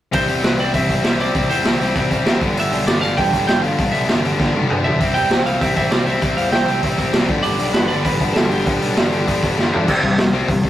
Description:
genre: punk rock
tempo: 197 BPM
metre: 4/4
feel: straight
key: unclear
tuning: A4 = 440 Hz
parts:
  - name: lightly driven lead guitar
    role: melody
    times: 0.1-9.6 s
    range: G4 to G5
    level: -22 LUFS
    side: right 2 dB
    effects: none
  - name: cranked stack guitar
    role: riff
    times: 0.1-9.9 s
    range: G2 to C4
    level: -25 LUFS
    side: right 3 dB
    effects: overdrive
  - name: distorted electric guitar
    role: riff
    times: 0.1-10.7 s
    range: G2 to E4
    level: -21 LUFS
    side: left 4 dB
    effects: overdrive
  - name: fuzz picked electric bass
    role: bass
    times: 0.1-10.7 s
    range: G1 to F2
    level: -26 LUFS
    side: equal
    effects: overdrive
  - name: raw garage drum kit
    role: drums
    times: 0.1-10.7 s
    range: crash cymbal, hi-hat, kick drum, snare drum, toms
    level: -19 LUFS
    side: right 1 dB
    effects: none
room: light reverb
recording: rough rehearsal-room recording, tube saturation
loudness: -15 LUFS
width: side -12 dB against mid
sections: 0.1-9.9 A section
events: drum fill 4.4-5.0, 9.6-9.9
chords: 0.1 C; 2.4 G; 5.0 C; 7.3 G; 9.9 C5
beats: | 0.13 0.44 0.74 1.04 | 1.35 1.65 1.96 2.26 | 2.57 2.87 3.18 3.48 | 3.78 4.09 4.39 4.70 | 5.00 5.31 5.61 5.92 | 6.22 6.53 6.83 7.13 | 7.44 7.74 8.05 8.35 | 8.66 8.96 9.27 9.57 | 9.87 10.18 10.48

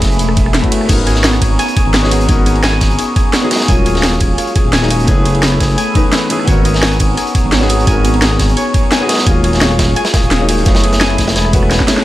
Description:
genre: liquid drum and bass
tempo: 172 BPM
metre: 4/4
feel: straight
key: unclear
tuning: A4 = 440 Hz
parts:
  - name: dark grand piano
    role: accompaniment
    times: 0.0-12.0 s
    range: E3 to B4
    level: -18 LUFS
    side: left 2 dB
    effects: vintage 12-bit sampler grit, dub echo
  - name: airy breathy pad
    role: sustained chords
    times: 0.0-12.0 s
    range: A3 to E6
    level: -21 LUFS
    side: equal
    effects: chorus, sidechain pumping
  - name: smooth synth bass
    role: bass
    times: 0.0-11.8 s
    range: D#1 to G#1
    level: -15 LUFS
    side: equal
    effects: none
  - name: crunchy breakbeat drum kit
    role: drums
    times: 0.0-12.0 s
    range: hi-hat, snare drum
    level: -21 LUFS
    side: equal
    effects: high-pass filter on hats, high-pass filter on snare, high-pass filter on room
  - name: drum and bass drum kit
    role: drums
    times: 0.0-12.0 s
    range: crash cymbal, hi-hat, ride cymbal, rim click, snare drum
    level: -18 LUFS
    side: equal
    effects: none
  - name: electronic kick drum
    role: drums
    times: 0.0-11.9 s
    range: none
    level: -14 LUFS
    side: equal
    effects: none
  - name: concert harp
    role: arpeggios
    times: 0.9-12.0 s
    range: D#4 to G#5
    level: -21 LUFS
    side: left 1 dB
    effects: tape echo
room: small room ambience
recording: none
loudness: -10 LUFS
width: side -15 dB against mid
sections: 0.0-12.0 A section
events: drop 0.0-12.0; drum fill 11.7-12.0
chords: 0.0 F#m11; 0.9 G#m11; 3.7 D#m11; 5.1 F#m11; 6.5 G#m11; 9.3 D#m11; 10.7 F#m11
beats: 0.20 0.55 | 0.90 1.24 1.59 1.94 | 2.29 2.64 2.99 3.34 | 3.69 4.03 4.38 4.73 | 5.08 5.43 5.78 6.13 | 6.48 6.83 7.17 7.52 | 7.87 8.22 8.57 8.92 | 9.27 9.62 9.96 10.31 | 10.66 11.01 11.36 11.71

